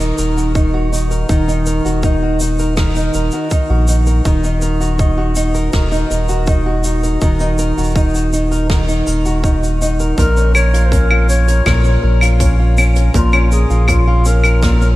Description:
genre	folktronica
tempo	81 BPM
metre	4/4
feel	straight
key	Eb minor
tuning	A4 = 440 Hz
part	fingerpicked steel-string acoustic guitar	arpeggios	0.0-15.0 s	Bb2 to Bb4	-18 LUFS	equal	diffuse ambient delay
part	warm sub bass	bass	0.0-15.0 s	Eb1 to Bb1	-14 LUFS	equal	none
part	vintage brush drum kit	drums	0.0-15.0 s	claves, hi-hat, rim click, shaker	-22 LUFS	equal	none
part	electronic kick drum	drums	0.6-14.8 s	none	-15 LUFS	equal	none
part	breathy clarinet	melody	10.2-15.0 s	F4 to Db5	-21 LUFS	left 2 dB	diffuse ambient delay
room	light reverb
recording	faint mains hum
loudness	-12 LUFS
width	side -17 dB against mid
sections	0.0-15.0 A section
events	none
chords	0.0 Ebm; 10.2 Bbm

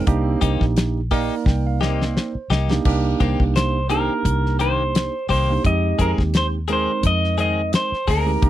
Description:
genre	straight-eighth soul blues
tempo	86 BPM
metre	4/4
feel	swing 56% on 16ths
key	C minor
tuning	A4 = 445 Hz
part	electric guitar through a small old amp	melody	0.0-8.5 s	Bb4 to Eb5	-22 LUFS	left 1 dB	slapback echo
part	barky tine electric piano	accompaniment	0.0-8.5 s	Ab3 to Bb5	-24 LUFS	right 6 dB	none
part	mellow horn section	sustained chords	0.1-2.4 s	C3 to C4	-32 LUFS	left 3 dB	none
part	vintage muted fingered electric bass	bass	0.1-8.5 s	Bb1 to F2	-22 LUFS	equal	none
part	damped 70s drum kit	drums	0.1-8.5 s	crash cymbal, hi-hat, kick drum, snare drum	-21 LUFS	left 1 dB	none
part	direct-recorded clean electric guitar	stabs	0.4-8.3 s	Eb3 to Ab4	-26 LUFS	left 8 dB	vibrato effect
room	little or no reverb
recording	dry, close 1970s-style studio recording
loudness	-18 LUFS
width	side -13 dB against mid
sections	0.0-2.9 A section; 2.9-8.5 B section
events	tine electric piano fill 0.8-2.9; drum fill 1.5-2.9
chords	0.1 Cm7; 5.6 Fm7

